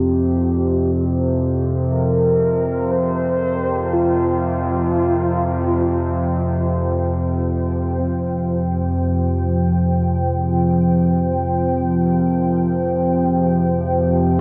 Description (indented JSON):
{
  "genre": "dark ambient drone",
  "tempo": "free time",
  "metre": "none",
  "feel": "none",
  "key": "unclear",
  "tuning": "A4 = 436 Hz",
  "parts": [
    { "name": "mellow horn-like synth lead", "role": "melody", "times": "0.0-14.4 s", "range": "F4 to C5", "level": "-26 LUFS", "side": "equal", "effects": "subtle chorus, vintage 12-bit sampler grit, tape echo" },
    { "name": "deep dark ambient pad", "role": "sustained chords", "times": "1.2-14.4 s", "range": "F3 to G5", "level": "-24 LUFS", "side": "equal", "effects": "chorus, built-in reverb" },
    { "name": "dark detuned synth bell", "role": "arpeggios", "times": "0.0-8.0 s", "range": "E4 to G4", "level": "-34 LUFS", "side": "equal", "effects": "none" },
    { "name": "analog drone", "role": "drone", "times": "0.0-14.4 s", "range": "F2 to C3", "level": "-21 LUFS", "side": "equal", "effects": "chorus" }
  ],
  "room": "wet huge ambient reverb, RT60 7.7 s",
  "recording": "worn, warbling old tape, cassette tape, warbly pitch drift",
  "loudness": "-19 LUFS",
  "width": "mono",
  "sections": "0.0-8.0 A section; 8.0-14.4 B section",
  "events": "none",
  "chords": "0.0 Fsus2; 8.0 Fmadd9"
}